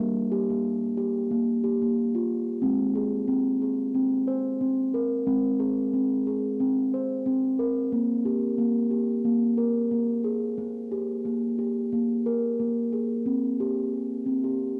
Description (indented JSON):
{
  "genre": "world meditative, meditative tuned percussion",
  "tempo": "90 BPM",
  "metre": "4/4",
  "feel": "swing 54% on 16ths",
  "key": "unclear",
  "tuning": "A4 = 440 Hz",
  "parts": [
    { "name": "steel tongue drum", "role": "solo", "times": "0.0-14.8 s", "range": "G3 to C5", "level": "-26 LUFS", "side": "equal", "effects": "cassette tape, analog delay" }
  ],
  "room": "wet studio reverb, RT60 0.6 s",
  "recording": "home recording on cassette",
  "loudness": "-26 LUFS",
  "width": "mono",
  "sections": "0.0-2.6 A section; 2.6-13.3 B section; 13.3-14.8 C section",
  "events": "none",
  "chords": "0.0 Gm; 2.6 Ab; 7.9 Gm/Bb; 13.3 C5",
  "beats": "0.64 1.30 1.96 | 2.62 3.28 3.94 4.60 | 5.27 5.93 6.60 7.26 | 7.92 8.59 9.26 9.92 | 10.59 11.25 11.92 12.59 | 13.25 13.92 14.59"
}